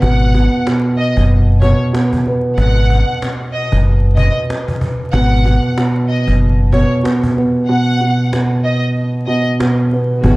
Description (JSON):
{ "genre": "hip hop, boom-bap hip-hop", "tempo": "94 BPM", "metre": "4/4", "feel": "swing 58% on 16ths", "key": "G# minor", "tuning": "A4 = 440 Hz", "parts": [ { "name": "warm studio violin section", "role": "melody", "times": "0.0-9.4 s", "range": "C#5 to F#5", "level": "-21 LUFS", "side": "equal", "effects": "high-pass filter, low-pass filter, digital delay" }, { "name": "dark upright piano", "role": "accompaniment", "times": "0.0-10.4 s", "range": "B2 to B3", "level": "-16 LUFS", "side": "right 1 dB", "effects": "high-pass filter, low-pass filter" }, { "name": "deep dub fingered electric bass", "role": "bass", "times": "0.0-10.4 s", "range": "F#1 to G#1", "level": "-12 LUFS", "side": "equal", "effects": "none" }, { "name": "cajon", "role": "drums", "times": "0.0-10.4 s", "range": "none", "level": "-22 LUFS", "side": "equal", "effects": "none" }, { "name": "warm studio string section", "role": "sustained chords", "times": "10.2-10.4 s", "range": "D#3 to F#4", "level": "-19 LUFS", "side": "left 1 dB", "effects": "high-pass filter, low-pass filter" } ], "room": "studio reverb", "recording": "dark, warm production, vinyl crackle", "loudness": "-12 LUFS", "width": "side -21 dB against mid", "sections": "0.0-10.2 A section", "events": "kick muted 7.7-10.2", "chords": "0.0 G#m7", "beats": "| 0.02 0.66 1.30 1.94 | 2.58 3.21 3.85 4.49 | 5.13 5.77 6.41 7.04 | 7.68 8.32 8.96 9.60 | 10.23" }